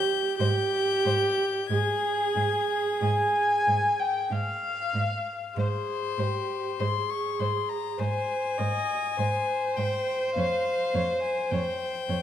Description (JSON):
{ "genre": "classical, slow romantic movement for string quartet", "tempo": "45-53 BPM", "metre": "4/4", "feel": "rubato", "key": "Ab major", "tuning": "A4 = 438 Hz", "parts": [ { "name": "rich violin", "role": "melody", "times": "0.0-12.2 s", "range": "C5 to Ab6", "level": "-31 LUFS", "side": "left 8 dB", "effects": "none" }, { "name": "warm viola", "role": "accompaniment", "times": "0.0-12.2 s", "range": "G4 to Eb5", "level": "-29 LUFS", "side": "right 2 dB", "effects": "none" }, { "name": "dark violin", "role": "second line", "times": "0.4-12.2 s", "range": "Ab4 to Ab5", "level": "-28 LUFS", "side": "left 1 dB", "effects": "none" }, { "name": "warm cello", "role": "bass", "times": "0.4-12.2 s", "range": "F2 to Ab2", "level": "-31 LUFS", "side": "right 2 dB", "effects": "none" } ], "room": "wet recital hall reverb, RT60 1.4 s", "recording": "none", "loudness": "-24 LUFS", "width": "side -10 dB against mid", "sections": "0.0-5.6 A section; 5.6-12.2 A section", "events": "none", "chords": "0.4 N.C.; 5.6 Ab; 10.4 N.C.", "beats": "| 0.40 1.70 3.01 4.30 | 5.56 6.79 7.98 9.18 | 10.36 11.52" }